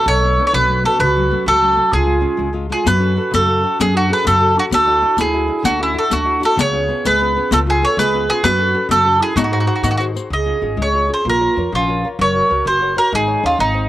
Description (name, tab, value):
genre	italian folk, Italian serenade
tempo	129 BPM (dotted quarters)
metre	6/8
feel	straight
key	F# minor, Db major from 10.3 s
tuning	A4 = 445 Hz
part	mandolin	melody	0.0-13.9 s	Eb4 to Eb5	-15 LUFS	equal	none
part	dark clarinet	second line	0.0-13.9 s	C4 to Bb4	-22 LUFS	right 6 dB	cassette tape
part	nylon-string guitar	accompaniment	0.0-13.9 s	B2 to Db5	-24 LUFS	left 6 dB	cassette tape
part	upright bass	bass	0.1-13.9 s	Gb1 to G#2	-21 LUFS	equal	none
part	riq	percussion	2.9-10.2 s	none	-22 LUFS	left 6 dB	none
room	light reverb, small room ambience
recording	home recording on cassette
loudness	-13 LUFS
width	side -14 dB against mid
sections	0.0-10.3 A section; 10.3-13.9 B section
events	none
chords	0.0 Bm7; 1.0 F#m/C#; 1.9 C#; 2.9 F#m; 4.7 Dadd9; 6.6 C#7; 8.4 F#m; 9.4 G#7; 10.3 Db; 11.3 Bbm; 12.2 Gb; 13.1 Absus4